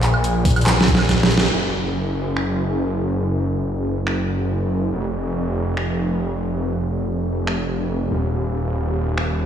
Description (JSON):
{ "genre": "future bass", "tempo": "141 BPM", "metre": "4/4", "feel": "half-time", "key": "Eb minor", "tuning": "A4 = 440 Hz", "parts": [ { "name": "wide detuned saw bass", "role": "bass", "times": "0.0-9.5 s", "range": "Eb1 to Bb1", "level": "-20 LUFS", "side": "equal", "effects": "chorus, sidechain pumping" }, { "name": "dubstep drum kit", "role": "drums", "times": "0.0-9.3 s", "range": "crash cymbal, finger snaps, handclaps, hi-hat, snare drum, woodblock", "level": "-20 LUFS", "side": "right 1 dB", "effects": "overdrive, low-pass filter on hats, low-pass filter on perc, low-pass filter on snare, low-pass filter on cymbals" }, { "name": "electronic kick drum", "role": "drums", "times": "0.5-1.2 s", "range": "none", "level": "-19 LUFS", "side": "equal", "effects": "overdrive" } ], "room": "light reverb, digital ambience", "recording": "played on a big sound system in a bare room, large studio reverb, small room ambience", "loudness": "-18 LUFS", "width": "side -9 dB against mid", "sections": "0.0-1.5 A section; 1.5-9.5 B section", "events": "drop 0.0-1.5; drum fill 0.7-1.5; band accent 1.4", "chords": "none" }